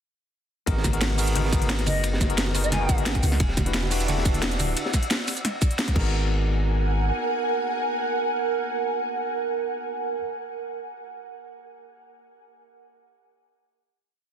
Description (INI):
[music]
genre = liquid drum and bass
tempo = 176 BPM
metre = 4/4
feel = straight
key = G# minor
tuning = A4 = 439 Hz
[part]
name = bell-like tine electric piano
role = accompaniment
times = 0.7-10.2 s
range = B3 to B4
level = -32 LUFS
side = left 1 dB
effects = medium stereo tremolo, ping-pong delay
[part]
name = long sustained 808-style bass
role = bass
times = 0.7-7.1 s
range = D1 to C#2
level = -25 LUFS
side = equal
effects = tube saturation
[part]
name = crunchy breakbeat drum kit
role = drums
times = 0.7-6.0 s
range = hi-hat, ride cymbal, snare drum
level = -33 LUFS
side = equal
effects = high-pass filter on cymbals, studio reverb, high-pass filter on hats, high-pass filter on snare, high-pass filter on room
[part]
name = drum and bass drum kit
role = drums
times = 0.7-6.0 s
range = crash cymbal, hi-hat, shaker, snare drum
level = -28 LUFS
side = equal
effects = studio reverb
[part]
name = electronic kick drum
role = drums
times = 0.7-6.0 s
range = none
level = -23 LUFS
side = equal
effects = studio reverb
[part]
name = congas and bongos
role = percussion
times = 0.8-4.7 s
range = none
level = -32 LUFS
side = right 3 dB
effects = none
[part]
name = silver concert flute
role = melody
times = 1.9-3.0 s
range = D#5 to G#5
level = -31 LUFS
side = left 2 dB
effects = digital delay
[part]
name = ethereal airy pad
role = sustained chords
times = 3.9-9.6 s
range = A#4 to E6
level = -28 LUFS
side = right 3 dB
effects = ensemble chorus, built-in reverb
[sound]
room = light reverb, small room ambience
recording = dense, heavily limited modern master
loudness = -22 LUFS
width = side -8 dB against mid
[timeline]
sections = 0.7-6.1 drop; 6.1-8.9 final hit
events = drop 0.7-6.1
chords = 0.7 G#m9; 3.4 Em9; 6.0 G#m9